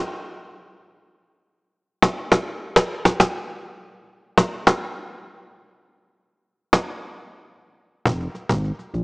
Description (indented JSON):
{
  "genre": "dancehall",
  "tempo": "102 BPM",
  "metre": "4/4",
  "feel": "straight",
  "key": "F minor",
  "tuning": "A4 = 435 Hz",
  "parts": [
    { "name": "cajon", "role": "drums", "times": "2.0-9.0 s", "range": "none", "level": "-19 LUFS", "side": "equal", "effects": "none" },
    { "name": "sub bass with octave", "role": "bass", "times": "8.1-9.0 s", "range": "F1 to Bb1", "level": "-24 LUFS", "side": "equal", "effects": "none" }
  ],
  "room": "moderate lush hall reverb, RT60 2.0 s, small room ambience",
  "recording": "dry, gritty hardware recording, cassette tape, small speaker sound",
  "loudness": "-19 LUFS",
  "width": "side -29 dB against mid",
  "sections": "0.0-8.1 A section",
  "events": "break 6.9-8.1",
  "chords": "none",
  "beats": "0.41 | 1.00 1.58 2.17 2.76 | 3.35 3.94 4.53 5.11 | 5.70 6.29 6.88 7.47 | 8.06 8.64"
}